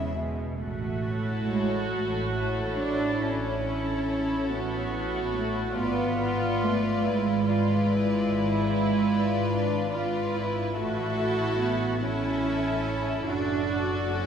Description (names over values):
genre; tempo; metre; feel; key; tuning
classical, slow romantic movement for string orchestra; 42-50 BPM (dotted quarters); 12/8; rubato; A major; A4 = 439 Hz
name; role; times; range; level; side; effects
dark studio violin section; melody; 0.0-14.3 s; C#5 to E5; -36 LUFS; left 5 dB; none
rich studio violin section; second line; 0.0-14.3 s; E4 to B4; -33 LUFS; left 2 dB; none
warm studio viola section; accompaniment; 0.0-14.3 s; G#3 to F#4; -32 LUFS; right 2 dB; none
dark studio double bass section; bass; 0.0-14.3 s; E1 to A1; -32 LUFS; right 2 dB; none
warm studio cello section; bass; 0.0-14.3 s; B2 to D4; -28 LUFS; right 2 dB; none
room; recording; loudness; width
wet church reverb, RT60 3.6 s; recorded in a church or concert hall; -24 LUFS; side -8 dB against mid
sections
0.6-14.3 A section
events
none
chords
0.0 E; 0.6 A; 5.7 G#dim7; 10.8 A; 13.3 D/F#